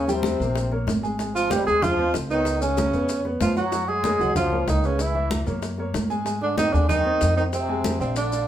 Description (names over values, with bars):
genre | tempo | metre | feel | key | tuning
Afro-Cuban jazz | 189 BPM | 4/4 | straight | unclear | A4 = 440 Hz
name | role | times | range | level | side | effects
breathy tenor saxophone | melody | 0.0-8.5 s | C4 to Ab4 | -24 LUFS | right 3 dB | none
trombone with plunger mute | second line | 0.0-8.5 s | C3 to Ab3 | -30 LUFS | left 4 dB | none
warm baby grand piano | accompaniment | 0.0-8.5 s | Fb3 to Ab5 | -29 LUFS | equal | none
upright bass | bass | 0.0-8.4 s | Ab1 to Ab2 | -27 LUFS | equal | none
bongos | percussion | 0.1-8.5 s | none | -34 LUFS | left 5 dB | none
congas | percussion | 0.1-8.5 s | none | -30 LUFS | equal | none
maracas | percussion | 0.1-8.5 s | none | -38 LUFS | left 4 dB | none
room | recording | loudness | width
wet studio reverb, RT60 0.6 s | band playing live in one room | -20 LUFS | side -11 dB against mid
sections
0.0-8.5 A section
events
none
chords
0.0 Eb6; 1.2 Ab; 2.5 Db7; 3.7 Gbadd9; 5.0 Dbm7; 5.6 Gbadd9; 6.3 Ab6; 7.5 Fm7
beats
0.24 0.56 0.88 | 1.19 1.51 1.83 2.14 | 2.46 2.78 3.09 3.41 | 3.73 4.05 4.36 4.68 | 5.00 5.31 5.63 5.95 | 6.27 6.58 6.90 7.22 | 7.53 7.85 8.17